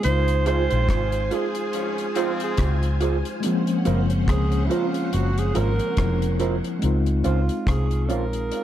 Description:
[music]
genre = lovers rock reggae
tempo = 71 BPM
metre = 4/4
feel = swing 57% on 16ths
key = Db major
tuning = A4 = 440 Hz
[part]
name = breathy alto saxophone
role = melody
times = 0.0-8.6 s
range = Fb4 to C5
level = -28 LUFS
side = right 4 dB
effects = tape echo
[part]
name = string machine, full ensemble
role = second line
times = 0.0-6.8 s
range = Db4 to Ab5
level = -32 LUFS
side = equal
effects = ensemble chorus, dub echo
[part]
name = mellow tine electric piano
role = accompaniment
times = 0.0-8.6 s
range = F3 to C5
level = -27 LUFS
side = left 3 dB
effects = fast stereo tremolo
[part]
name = deep reggae drum kit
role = drums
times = 0.0-8.6 s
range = hi-hat, kick drum, rim click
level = -28 LUFS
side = equal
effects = none
[part]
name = vintage muted fingered electric bass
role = bass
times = 0.1-8.5 s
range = F1 to Db2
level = -22 LUFS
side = equal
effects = none
[part]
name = warm horn section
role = second line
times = 0.5-3.0 s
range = Ab2 to F4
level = -34 LUFS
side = left 4 dB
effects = none
[part]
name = electric guitar through a small old amp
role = stabs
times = 0.5-8.2 s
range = Db4 to C5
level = -29 LUFS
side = right 6 dB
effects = lush chorus, dub echo
[sound]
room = little or no reverb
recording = dark, warm production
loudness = -20 LUFS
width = side -11 dB against mid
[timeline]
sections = 0.0-6.8 A section; 6.8-8.6 B section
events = alto saxophone solo 0.0-6.8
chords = 0.0 Dbmaj7; 3.4 Gbmaj9#11; 6.8 Dbmaj7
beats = | 0.04 0.89 1.74 2.58 | 3.43 4.28 5.13 5.97 | 6.82 7.67 8.52

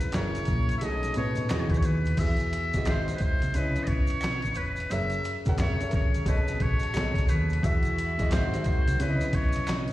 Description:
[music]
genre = R&B, neo-soul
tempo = 88 BPM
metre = 4/4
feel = swing 63% on 16ths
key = E major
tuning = A4 = 444 Hz
[part]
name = trumpet with metal mute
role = melody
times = 0.0-9.8 s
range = B4 to E5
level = -32 LUFS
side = left 1 dB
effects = plate reverb, slapback echo
[part]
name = clear upright piano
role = accompaniment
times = 0.0-9.9 s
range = B2 to F#5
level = -33 LUFS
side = left 1 dB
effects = plate reverb, slapback echo
[part]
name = dusty soul sampler-style drum kit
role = drums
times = 0.0-9.9 s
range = crash cymbal, handclaps, hi-hat, kick drum, snare drum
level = -28 LUFS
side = equal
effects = none
[part]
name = maracas and finger snaps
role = percussion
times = 0.0-9.9 s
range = none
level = -46 LUFS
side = right 3 dB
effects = none
[part]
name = hollow-body short-scale fingered electric bass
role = bass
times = 0.1-9.9 s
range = E1 to B2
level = -28 LUFS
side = equal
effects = none
[part]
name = warm studio string section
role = sustained chords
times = 7.6-9.9 s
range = C#3 to D#5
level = -37 LUFS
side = right 1 dB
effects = none
[sound]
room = light reverb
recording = live gig heard through the venue's PA, recital hall reverb, vinyl crackle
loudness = -24 LUFS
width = side -16 dB against mid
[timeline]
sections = 0.0-2.2 A section; 2.2-9.9 B section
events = none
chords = 0.0 F#9; 0.8 B13; 1.5 Emaj7; 2.2 Emaj9; 2.9 G#7b13; 3.5 C#m9; 4.9 F#7; 5.6 F#9; 6.3 B13; 7.6 Emaj9; 8.3 G#7b13; 9.0 C#m9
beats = 0.13 0.81 1.49 | 2.17 2.86 3.54 4.22 | 4.90 5.58 6.27 6.95 | 7.63 8.31 8.99 9.68

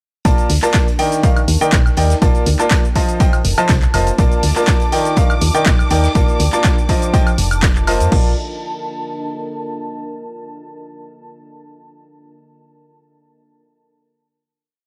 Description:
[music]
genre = piano house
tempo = 122 BPM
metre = 4/4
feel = swing 53% on 16ths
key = Bb major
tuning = A4 = 443 Hz
[part]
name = raw garage drum kit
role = drums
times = 0.2-8.1 s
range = hi-hat, snare drum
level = -36 LUFS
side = equal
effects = none
[part]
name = clear upright piano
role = riff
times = 0.3-8.3 s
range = Eb3 to A5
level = -21 LUFS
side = equal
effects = sidechain pumping
[part]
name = solid FM bass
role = bass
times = 0.3-8.3 s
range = F1 to F2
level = -19 LUFS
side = equal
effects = sidechain pumping
[part]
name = electronic kick drum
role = drums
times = 0.3-8.2 s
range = none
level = -17 LUFS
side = equal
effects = none
[part]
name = punchy analog drum machine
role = drums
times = 0.3-8.2 s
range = crash cymbal, handclaps, hi-hat, shaker, woodblock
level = -25 LUFS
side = equal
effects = none
[part]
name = deep dark ambient pad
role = texture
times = 0.9-10.0 s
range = D4 to A5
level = -30 LUFS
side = equal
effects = chorus, built-in reverb, sidechain pumping
[part]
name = dark studio string section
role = sustained chords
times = 4.2-8.1 s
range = D6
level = -30 LUFS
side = equal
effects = sidechain pumping
[sound]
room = studio reverb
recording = dry, gritty hardware recording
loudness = -15 LUFS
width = mono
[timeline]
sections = 0.3-8.1 drop; 8.1-10.1 final chord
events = drop 0.3-8.1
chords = 0.3 Bbmaj7; 1.0 Ebmaj7; 2.2 Bbmaj7; 3.0 F7; 4.2 Bbmaj7; 4.9 Ebmaj7; 6.2 Bbmaj7; 6.9 F7; 8.1 Bbmaj7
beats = | 0.25 0.74 1.24 1.73 | 2.22 2.71 3.20 3.69 | 4.19 4.68 5.17 5.66 | 6.15 6.64 7.14 7.63 | 8.12 8.61 9.10 9.60

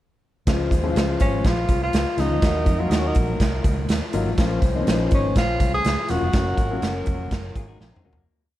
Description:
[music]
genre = uptempo 1960s-style soul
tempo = 123 BPM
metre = 4/4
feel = straight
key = Db major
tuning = A4 = 436 Hz
[part]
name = warm saxophone section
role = second line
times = 0.5-8.0 s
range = F3 to C5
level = -32 LUFS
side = equal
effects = none
[part]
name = warm concert grand piano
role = accompaniment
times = 0.5-8.2 s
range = F3 to Gb4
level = -27 LUFS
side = left 4 dB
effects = none
[part]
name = vintage muted fingered electric bass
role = bass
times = 0.5-8.3 s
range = Fb1 to F2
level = -26 LUFS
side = equal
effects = none
[part]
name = raw garage drum kit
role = drums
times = 0.5-8.2 s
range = hi-hat, kick drum, snare drum, toms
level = -22 LUFS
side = equal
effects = none
[part]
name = warm tenor saxophone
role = melody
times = 1.2-7.1 s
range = Db4 to Ab4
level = -26 LUFS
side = equal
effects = tape echo
[part]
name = electric guitar through a small old amp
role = riff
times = 7.6-8.4 s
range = Gb3 to Ab4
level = -51 LUFS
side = left 6 dB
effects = tremolo
[sound]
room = light reverb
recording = dark, warm production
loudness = -19 LUFS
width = side -14 dB against mid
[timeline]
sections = 0.5-8.3 verse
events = fade-out 6.3-8.3; drum fill 7.8-8.3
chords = 0.5 Db; 2.4 Ebm; 4.4 Bbm; 6.3 Gb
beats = | 0.47 0.96 1.45 1.93 | 2.42 2.91 3.40 3.89 | 4.38 4.87 5.35 5.84 | 6.33 6.82 7.31 7.80

